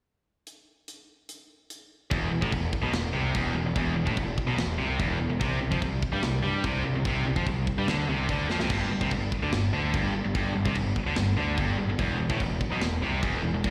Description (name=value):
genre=heavy metal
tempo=146 BPM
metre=4/4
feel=straight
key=E phrygian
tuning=A4 = 440 Hz
part: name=tight metal drum kit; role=drums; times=0.5-13.7 s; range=china cymbal, crash cymbal, hi-hat, kick drum, snare drum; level=-35 LUFS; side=equal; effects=none
part: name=sludgy distorted guitar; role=riff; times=2.1-13.7 s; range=E2 to G3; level=-37 LUFS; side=equal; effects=none
part: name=tight distorted guitar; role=riff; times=2.1-13.7 s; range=E2 to G3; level=-32 LUFS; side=equal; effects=distortion, slapback echo
part: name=fuzz picked electric bass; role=bass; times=2.1-13.7 s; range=E1 to G2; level=-32 LUFS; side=equal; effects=overdrive
room=small room ambience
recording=live gig heard through the venue's PA, recital hall reverb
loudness=-28 LUFS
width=mono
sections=0.5-2.1 A section; 2.1-13.7 B section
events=drum fill 8.5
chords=0.5 N.C.; 2.1 E5; 5.4 C5; 8.7 G5; 12.0 E5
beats=| 0.47 0.88 1.29 1.70 | 2.11 2.52 2.93 3.35 | 3.76 4.17 4.58 4.99 | 5.40 5.82 6.23 6.64 | 7.05 7.46 7.88 8.29 | 8.70 9.11 9.52 9.93 | 10.35 10.76 11.17 11.58 | 11.99 12.40 12.82 13.23 | 13.64